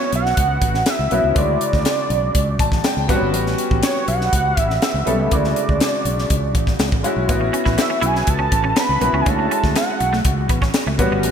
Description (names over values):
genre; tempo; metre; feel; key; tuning
polished 1980s jazz-funk pop; 122 BPM; 4/4; straight; unclear; A4 = 440 Hz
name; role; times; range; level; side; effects
fat analog lead; melody; 0.0-10.5 s; C#5 to B5; -21 LUFS; right 2 dB; chorus, ping-pong delay
clear baby grand piano; accompaniment; 0.0-11.3 s; C#3 to A5; -22 LUFS; left 2 dB; lush chorus
fretless electric bass; bass; 0.1-11.3 s; G1 to D2; -22 LUFS; equal; none
crisp fusion drum kit; drums; 0.1-11.3 s; hi-hat, kick drum, snare drum; -21 LUFS; equal; gated reverb
semi-hollow electric guitar; riff; 7.4-11.2 s; A3 to E4; -26 LUFS; right 3 dB; analog chorus
room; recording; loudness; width
moderate lush hall reverb, RT60 1.7 s; bright 1980s-style digital production; -16 LUFS; side -8 dB against mid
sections
0.0-11.3 A section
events
grand piano fill 2.4-3.3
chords
0.0 A6; 1.4 Dmaj9#11; 3.1 A13; 5.3 Dmaj9#11; 7.3 A6; 9.3 Dmaj9#11